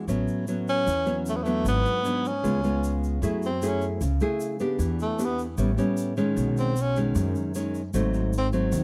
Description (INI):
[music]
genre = bossa nova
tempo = 153 BPM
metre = 4/4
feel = straight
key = A major, F# minor from 3.2 s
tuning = A4 = 440 Hz
[part]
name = nylon-string guitar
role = accompaniment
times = 0.0-8.8 s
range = F#2 to G#4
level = -29 LUFS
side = equal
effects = none
[part]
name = upright bass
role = bass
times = 0.0-8.8 s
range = G#1 to F#2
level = -30 LUFS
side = equal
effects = none
[part]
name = egg shaker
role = percussion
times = 0.1-8.8 s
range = none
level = -47 LUFS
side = equal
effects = none
[part]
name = breathy tenor saxophone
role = melody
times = 0.7-8.5 s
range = G#3 to C#4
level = -30 LUFS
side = equal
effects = none
[sound]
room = small room ambience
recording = dry, close 1970s-style studio recording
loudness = -26 LUFS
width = mono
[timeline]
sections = 0.0-3.2 A section; 3.2-8.8 B section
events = tenor saxophone solo 3.2-8.8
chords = 0.1 A69; 1.7 G#m7b5; 2.4 C#7; 3.2 F#m9; 4.8 Em7; 5.6 A9; 6.4 B69; 7.9 G#7b9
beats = | 0.08 0.48 0.87 1.26 | 1.66 2.05 2.44 2.83 | 3.23 3.62 4.01 4.41 | 4.80 5.19 5.58 5.98 | 6.37 6.76 7.16 7.55 | 7.94 8.33 8.72